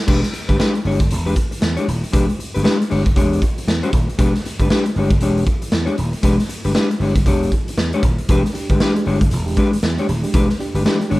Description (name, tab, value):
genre	funk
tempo	117 BPM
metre	4/4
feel	swing 60% on 16ths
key	unclear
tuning	A4 = 440 Hz
part	mellow electric guitar	accompaniment	0.1-11.2 s	G#3 to C#5	-20 LUFS	left 2 dB	none
part	vintage slap bass	bass	0.1-11.2 s	D#1 to E2	-20 LUFS	equal	none
part	raw garage drum kit	drums	0.1-11.2 s	crash cymbal, hi-hat, kick drum, snare drum	-19 LUFS	equal	none
part	reed electric piano	stabs	8.3-11.2 s	E3 to G4	-26 LUFS	right 2 dB	fast tremolo
room	moderate studio reverb, RT60 0.5 s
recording	rough home demo mix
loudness	-15 LUFS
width	side -19 dB against mid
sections	0.1-11.2 A section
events	none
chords	0.1 E7#9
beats	| 0.08 0.59 1.11 1.62 | 2.13 2.65 3.16 3.67 | 4.18 4.70 5.21 5.72 | 6.24 6.75 7.26 7.78 | 8.29 8.80 9.31 9.83 | 10.34 10.85